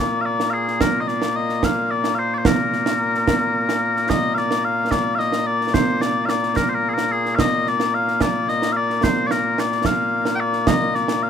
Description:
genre	scottish traditional, Scottish pipe music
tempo	73 BPM (dotted quarters)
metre	6/8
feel	straight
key	Bb mixolydian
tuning	A4 = 437 Hz
part	mellow small bagpipes	melody	0.0-11.3 s	Bb2 to G5	-19 LUFS	left 2 dB	none
part	concert snare drum and concert bass drum	drums	0.4-11.2 s	none	-22 LUFS	right 4 dB	none
room	light reverb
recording	minimal, uncompressed stereo recording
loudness	-18 LUFS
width	side -8 dB against mid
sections	0.0-4.1 A section; 4.1-11.3 B section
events	none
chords	none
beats	| 0.81 1.63 | 2.45 3.27 | 4.09 4.92 | 5.74 6.56 | 7.38 8.20 | 9.03 9.85 | 10.67

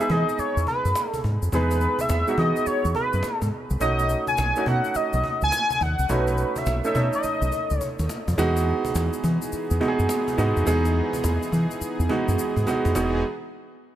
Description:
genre	R&B, new jack swing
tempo	105 BPM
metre	4/4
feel	swing 64% on 16ths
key	E major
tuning	A4 = 445 Hz
part	octave-doubled lead	melody	0.0-8.1 s	B4 to G#5	-25 LUFS	left 1 dB	chorus, phaser
part	clear baby grand piano	accompaniment	0.0-13.2 s	G#3 to A4	-26 LUFS	right 3 dB	none
part	egg shaker	percussion	0.0-13.2 s	none	-39 LUFS	left 8 dB	none
part	deep dub fingered electric bass	bass	0.1-13.2 s	E1 to E3	-23 LUFS	equal	none
part	cajon	drums	0.1-13.1 s	none	-36 LUFS	equal	none
part	brassy analog pad	sustained chords	8.4-13.2 s	E3 to G#4	-30 LUFS	right 1 dB	chorus
room	light reverb, small room ambience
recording	none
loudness	-21 LUFS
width	side -12 dB against mid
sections	0.0-8.4 A section; 8.4-13.0 B section; 13.0-14.0 C section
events	drum fill 7.2-8.4, 12.4-13.0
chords	0.0 Emaj7; 3.8 B7; 8.4 Emaj7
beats	0.38 0.95 | 1.52 2.10 2.67 3.24 | 3.81 4.38 4.95 5.52 | 6.09 6.67 7.24 7.81 | 8.38 8.95 9.52 10.10 | 10.67 11.24 11.81 12.38 | 12.95

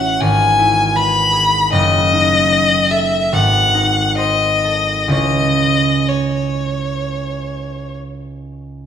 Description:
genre	classical, romantic duo for violin and harp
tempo	61-80 BPM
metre	4/4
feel	rubato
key	C# minor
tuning	A4 = 439 Hz
part	rich violin	melody	0.0-8.0 s	C#5 to B5	-15 LUFS	left 3 dB	none
part	concert harp	accompaniment	0.0-8.9 s	F#1 to D#5	-18 LUFS	right 1 dB	none
room	wet recital hall reverb, RT60 1.8 s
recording	minimal, uncompressed stereo recording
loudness	-12 LUFS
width	side -8 dB against mid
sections	0.0-8.9 A section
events	none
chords	0.2 E/G#; 1.7 D#dim/F#; 3.3 G#7b9; 5.1 C#m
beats	0.21 0.96 | 1.73 2.51 3.33 4.19 | 5.13 6.09 7.02 7.97

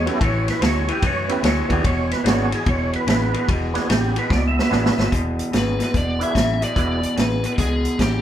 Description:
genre	electric blues shuffle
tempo	147 BPM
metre	4/4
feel	swing 65% on 8ths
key	E mixolydian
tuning	A4 = 440 Hz
part	overdriven tonewheel organ	accompaniment	0.0-7.0 s	B3 to E5	-24 LUFS	right 3 dB	slow rotary speaker, chorus vibrato
part	electric guitar through a small old amp	riff	0.0-8.2 s	E2 to F#3	-24 LUFS	left 2 dB	none
part	vintage muted fingered electric bass	bass	0.0-8.2 s	E1 to F#2	-24 LUFS	equal	none
part	vintage drum kit	drums	0.1-8.1 s	hi-hat, kick drum, ride cymbal, snare drum	-22 LUFS	right 1 dB	none
part	biting lead guitar	melody	5.6-8.2 s	G4 to E5	-25 LUFS	left 2 dB	overdrive
room	moderate large studio reverb, RT60 1.4 s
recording	band playing live in one room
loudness	-18 LUFS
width	side -11 dB against mid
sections	0.0-5.1 A section; 5.1-8.2 B section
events	drum fill 4.3-5.1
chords	0.2 A9; 1.8 E9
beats	| 0.21 0.62 1.03 1.44 | 1.85 2.26 2.67 3.08 | 3.49 3.90 4.30 4.71 | 5.12 5.53 5.94 6.35 | 6.76 7.17 7.58 7.99

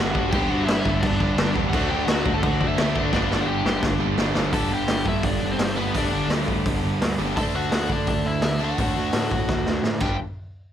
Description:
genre	punk rock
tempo	170 BPM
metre	4/4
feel	straight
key	G major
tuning	A4 = 440 Hz
part	biting lead guitar	melody	0.0-10.2 s	B3 to A5	-28 LUFS	left 1 dB	overdrive
part	cranked stack guitar	riff	0.0-10.2 s	G2 to D4	-29 LUFS	left 11 dB	overdrive
part	high-gain distorted guitar	riff	0.0-7.4 s	G2 to G4	-30 LUFS	equal	distortion
part	overdriven electric guitar	riff	0.0-10.2 s	G2 to D4	-28 LUFS	right 11 dB	none
part	fuzz picked electric bass	bass	0.0-10.2 s	G1 to D3	-29 LUFS	equal	overdrive
part	raw garage drum kit	drums	0.1-10.1 s	crash cymbal, hi-hat, kick drum, snare drum	-25 LUFS	equal	none
room	little or no reverb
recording	none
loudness	-20 LUFS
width	side -10 dB against mid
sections	0.0-4.5 A section; 4.5-10.2 B section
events	drum fill 3.1-4.5, 9.5-10.2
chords	0.0 G; 1.7 D; 3.1 G; 7.4 D; 10.0 G5; 10.2 N.C.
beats	| 0.33 0.68 1.03 1.38 | 1.73 2.08 2.43 2.78 | 3.13 3.48 3.83 4.18 | 4.54 4.89 5.24 5.59 | 5.94 6.30 6.65 7.00 | 7.36 7.71 8.06 8.41 | 8.77 9.12 9.48 9.83

